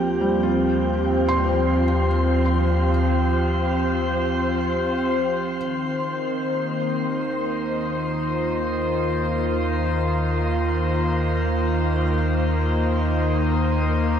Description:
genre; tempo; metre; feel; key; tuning
ambient; free time; none; none; Eb major; A4 = 440 Hz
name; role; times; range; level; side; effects
warbly tape-like pad; sustained chords; 0.0-14.2 s; Eb3 to C5; -21 LUFS; equal; chorus, built-in reverb
deep rumbling drone; bass; 0.2-14.2 s; Eb2; -24 LUFS; equal; built-in reverb
felt-muted upright piano; arpeggios; 0.2-5.6 s; G3 to C6; -30 LUFS; equal; ping-pong delay
room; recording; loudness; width
wet shimmer reverb, RT60 8.6 s; none; -20 LUFS; side -8 dB against mid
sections
0.0-5.6 A section; 5.6-14.2 B section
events
filter sweep on ambient pad 0.0-5.6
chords
0.0 Fsus2/Eb; 5.6 Eb5

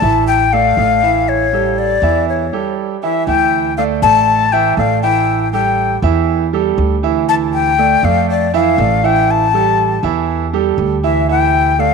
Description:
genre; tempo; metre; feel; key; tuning
latin, Cuban son and guajira; 120 BPM; 4/4; straight; D harmonic minor; A4 = 439 Hz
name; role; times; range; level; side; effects
breathy jazz flute; melody; 0.0-11.9 s; C#5 to A5; -14 LUFS; left 10 dB; none
bright concert grand piano; arpeggios; 0.0-11.9 s; E3 to E5; -16 LUFS; right 14 dB; none
upright bass; bass; 0.0-11.9 s; A1 to F2; -19 LUFS; equal; none
room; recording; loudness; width
moderate plate reverb, RT60 3.4 s; 1960s-style stereo with parts hard left and right; -12 LUFS; side -5 dB against mid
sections
0.0-3.3 A section; 3.3-11.9 B section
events
break 2.3-3.3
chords
0.0 Dmadd9; 1.3 A7; 3.3 Dsus2; 5.3 A5; 7.3 Dmadd9; 9.3 A5; 11.3 Dsus2

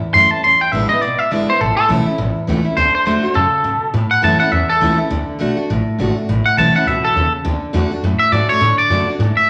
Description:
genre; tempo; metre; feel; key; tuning
rockabilly; 206 BPM; 4/4; swing 59% on 8ths; A major; A4 = 440 Hz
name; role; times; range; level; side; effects
picked steel-string acoustic guitar; accompaniment; 0.0-9.5 s; E2 to F#4; -22 LUFS; equal; none
upright bass; bass; 0.0-9.4 s; G#1 to A2; -22 LUFS; equal; none
twangy electric guitar; melody; 0.1-9.5 s; A4 to C6; -16 LUFS; equal; none
room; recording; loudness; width
wet large studio reverb, RT60 1.2 s; none; -16 LUFS; mono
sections
0.0-2.8 A section; 2.8-9.5 B section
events
clean electric guitar solo 0.0-2.8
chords
0.4 E7; 1.6 A; 2.8 D; 3.9 A; 5.1 D; 6.3 A; 7.4 D

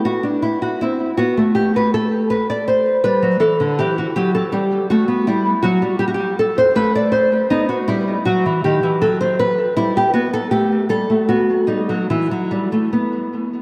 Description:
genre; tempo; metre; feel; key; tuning
classical, baroque-style dance for nylon-string guitar; 80 BPM; 3/4; rubato; G major, E minor from 5.3 s; A4 = 439 Hz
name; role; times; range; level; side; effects
nylon-string guitar; solo; 0.0-13.6 s; D3 to D5; -18 LUFS; equal; lush chorus, tape echo
room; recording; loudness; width
wet lush hall reverb, RT60 2.8 s; dreamy mix soaked in reverb; -18 LUFS; mono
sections
0.0-13.6 A section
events
none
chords
0.0 E5; 0.8 Am69; 3.0 G; 5.3 Emadd9/F#; 6.7 N.C.; 7.5 B; 9.0 N.C.; 9.8 Gmaj13; 10.5 Gsus2; 11.3 B; 12.1 Em

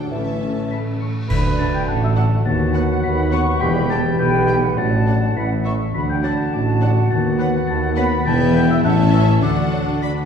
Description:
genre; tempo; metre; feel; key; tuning
cinematic, playful, whimsical film cue; 103 BPM; 2/4; straight; D major; A4 = 440 Hz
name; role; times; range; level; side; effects
clear studio violin section; melody; 0.0-10.1 s; E5 to B5; -36 LUFS; left 5 dB; none
large celesta; melody; 0.0-10.3 s; E5 to C#7; -28 LUFS; left 4 dB; none
mellow clarinet; second line; 0.0-9.8 s; C#4 to F#5; -33 LUFS; left 4 dB; none
rich studio viola section; accompaniment; 0.0-10.3 s; B3 to A4; -28 LUFS; right 2 dB; none
concert harp; arpeggios; 0.0-10.3 s; A2 to D6; -24 LUFS; left 5 dB; none
rich studio cello section; bass; 0.0-10.3 s; D2 to D3; -24 LUFS; right 1 dB; none
warm studio double bass section; bass; 0.0-10.3 s; E1 to D#2; -23 LUFS; right 2 dB; none
warm tuba; bass; 0.0-10.3 s; E1 to D#2; -25 LUFS; right 2 dB; none
large flute ensemble; second line; 0.1-10.1 s; D5 to C#6; -28 LUFS; left 1 dB; none
rich studio violin section; second line; 0.1-10.1 s; G4 to B5; -33 LUFS; left 4 dB; none
mellow bassoon; accompaniment; 0.1-9.8 s; E3 to A3; -30 LUFS; right 2 dB; none
mellow French horn section; sustained chords; 0.1-10.3 s; E3 to G4; -26 LUFS; left 4 dB; none
mellow cor anglais; second line; 1.3-10.3 s; B4 to A5; -28 LUFS; right 3 dB; none
clash cymbals and concert bass drum; percussion; 1.3-2.4 s; none; -26 LUFS; equal; none
room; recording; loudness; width
wet scoring stage reverb, RT60 1.5 s; heard from further back in the room; -16 LUFS; side -7 dB against mid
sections
0.0-1.3 A section; 1.3-10.3 B section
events
band accent 1.3-1.9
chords
0.1 A; 1.3 D; 2.5 B7/D#; 3.6 Em; 4.8 D/A; 5.4 A; 5.9 D; 7.1 B7/D#; 8.3 Em; 8.8 A; 9.4 D

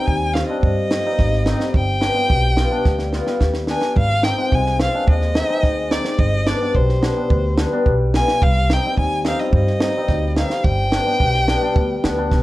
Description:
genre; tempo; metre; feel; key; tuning
klezmer; 108 BPM; 4/4; straight; G phrygian dominant; A4 = 438 Hz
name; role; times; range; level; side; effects
warm violin; melody; 0.0-12.3 s; C5 to Ab5; -22 LUFS; equal; none
cimbalom; accompaniment; 0.0-12.4 s; G3 to F4; -22 LUFS; left 2 dB; none
upright bass; bass; 0.1-12.4 s; G1 to G2; -21 LUFS; equal; none
compact cocktail drum kit; drums; 0.1-12.4 s; kick drum, snare drum; -20 LUFS; right 1 dB; none
room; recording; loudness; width
moderate studio reverb, RT60 0.6 s; dark, warm production; -16 LUFS; side -17 dB against mid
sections
0.0-4.0 A section; 4.0-12.4 A section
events
drum fill 2.9-4.0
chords
0.0 Cm; 1.7 G; 4.0 Ab; 6.2 G; 8.4 Cm; 10.6 G

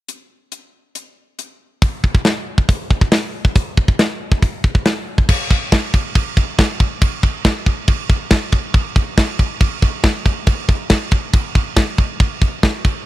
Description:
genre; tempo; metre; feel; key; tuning
metal; 139 BPM; 4/4; straight; none; none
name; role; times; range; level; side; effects
tight metal drum kit; drums; 0.1-12.9 s; crash cymbal, hi-hat, kick drum, snare drum; -14 LUFS; equal; none
room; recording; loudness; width
little or no reverb; dry, close 1970s-style studio recording; -14 LUFS; side -16 dB against mid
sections
0.1-1.8 A section; 1.8-5.3 B section; 5.3-13.1 C section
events
none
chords
none

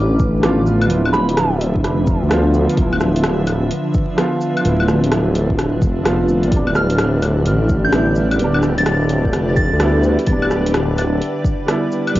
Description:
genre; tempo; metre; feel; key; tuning
future garage; 128 BPM; 4/4; swing 65% on 16ths; D dorian; A4 = 440 Hz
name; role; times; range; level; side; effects
felt-muted upright piano; accompaniment; 0.0-12.2 s; F3 to F4; -22 LUFS; right 1 dB; sidechain pumping, analog delay
granular cloud pad; sustained chords; 0.0-12.2 s; D3 to E5; -22 LUFS; equal; built-in reverb, sidechain pumping
swelling detuned saw bass; bass; 0.0-12.2 s; D1 to D2; -17 LUFS; equal; sidechain pumping
deep house drum kit; drums; 0.2-12.2 s; cabasa, claves, hi-hat, rim click; -22 LUFS; equal; cassette tape
electronic kick drum; drums; 0.2-11.6 s; none; -19 LUFS; equal; cassette tape
soft synth bell; melody; 1.1-1.5, 6.8-10.0 s; B5 to A6; -25 LUFS; right 1 dB; chorus, phaser, vintage 12-bit sampler grit, cassette tape, tape echo
room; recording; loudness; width
light reverb; home recording on cassette, vinyl crackle, nothing above 7.5 kHz; -14 LUFS; side -16 dB against mid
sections
0.0-12.2 A section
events
none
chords
0.0 Dm69

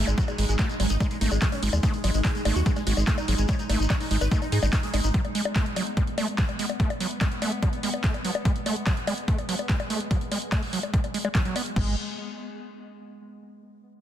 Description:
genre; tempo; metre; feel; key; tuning
psychedelic trance; 145 BPM; 4/4; straight; G# phrygian; A4 = 440 Hz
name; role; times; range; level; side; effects
pulsing gated texture; sustained chords; 0.0-11.8 s; G#3 to D#4; -34 LUFS; left 1 dB; chorus, built-in reverb, sidechain pumping
screaming distorted acid line; riff; 0.0-12.0 s; F#3 to D#4; -32 LUFS; right 3 dB; distortion, chorus, auto-pan, sidechain pumping, dub echo
round analog bass; bass; 0.0-5.1, 11.8-12.0 s; G#1 to G#2; -24 LUFS; equal; none
downlifter; sound effects; 0.0-1.8 s; none; -45 LUFS; equal; none
dense compressed supersaw; melody; 0.1-5.1 s; G#3 to C#5; -33 LUFS; equal; phaser, sidechain pumping, dub echo
techno drum kit; drums; 0.1-11.8 s; bongos, crash cymbal, handclaps, hi-hat; -31 LUFS; left 2 dB; none
shekere; percussion; 0.1-5.1 s; none; -38 LUFS; left 4 dB; none
electronic kick drum; drums; 0.2-11.8 s; none; -26 LUFS; equal; overdrive
room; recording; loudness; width
little or no reverb; dense, heavily limited modern master; -23 LUFS; side -11 dB against mid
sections
0.0-11.8 A section; 11.8-13.4 B section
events
filter sweep on acid bass 0.0-11.8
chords
0.0 G#5; 11.8 N.C.

